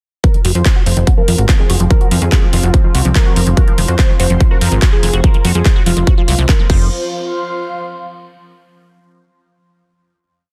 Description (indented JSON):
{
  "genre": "psychedelic trance",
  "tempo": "144 BPM",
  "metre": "4/4",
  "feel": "straight",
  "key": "F phrygian",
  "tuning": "A4 = 440 Hz",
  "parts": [
    { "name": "unison lead", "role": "melody", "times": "0.2-6.9 s", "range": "F4 to C5", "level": "-26 LUFS", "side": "equal", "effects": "phaser, sidechain pumping, dub echo" },
    { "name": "pulsing gated texture", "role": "sustained chords", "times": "0.9-6.7 s", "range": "F3 to C4", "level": "-27 LUFS", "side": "equal", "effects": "chorus, built-in reverb, sidechain pumping" },
    { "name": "liquid acid bass", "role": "riff", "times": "0.2-6.9 s", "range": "Eb3 to Gb4", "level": "-26 LUFS", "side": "equal", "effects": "phaser, sidechain pumping, dub echo" },
    { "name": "big-room dance drum kit", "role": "drums", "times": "0.2-6.8 s", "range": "crash cymbal, handclaps, hi-hat", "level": "-24 LUFS", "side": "equal", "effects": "none" },
    { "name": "electronic kick drum", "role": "drums", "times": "0.2-6.8 s", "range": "none", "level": "-13 LUFS", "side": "equal", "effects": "none" },
    { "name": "airy breathy pad", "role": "texture", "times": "0.2-8.5 s", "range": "F4 to C6", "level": "-28 LUFS", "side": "equal", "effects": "chorus, sidechain pumping" },
    { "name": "plucky analog bass", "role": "bass", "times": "0.4-6.9 s", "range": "F1 to F2", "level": "-16 LUFS", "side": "equal", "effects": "none" },
    { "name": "vowel-sweep wobble bass", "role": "second line", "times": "1.5-6.8 s", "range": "none", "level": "barely audible", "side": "none", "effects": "none" }
  ],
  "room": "little or no reverb",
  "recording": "dense, heavily limited modern master",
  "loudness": "-13 LUFS",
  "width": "mono",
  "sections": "0.2-6.9 groove; 6.9-8.6 final chord",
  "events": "filter sweep on acid bass 0.2-6.9",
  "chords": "0.2 F5"
}